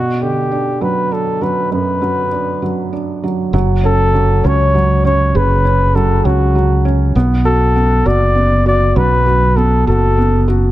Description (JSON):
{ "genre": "six-eight pop ballad", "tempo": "66 BPM (dotted quarters)", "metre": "6/8", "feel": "straight", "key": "B minor", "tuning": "A4 = 440 Hz", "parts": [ { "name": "breathy flugelhorn", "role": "melody", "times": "0.0-10.5 s", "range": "F#4 to D5", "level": "-16 LUFS", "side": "left 1 dB", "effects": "none" }, { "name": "felt-muted upright piano", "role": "accompaniment", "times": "0.0-10.7 s", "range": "F#2 to F#4", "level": "-17 LUFS", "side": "right 2 dB", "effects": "none" }, { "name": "fingered electric bass", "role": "bass", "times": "3.5-10.7 s", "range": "F#1 to C#2", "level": "-13 LUFS", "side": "equal", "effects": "none" } ], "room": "light reverb", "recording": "none", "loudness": "-11 LUFS", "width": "side -15 dB against mid", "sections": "0.0-3.5 A section; 3.5-10.7 B section", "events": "none", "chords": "0.0 Bm; 3.5 F#m; 7.2 Bm7" }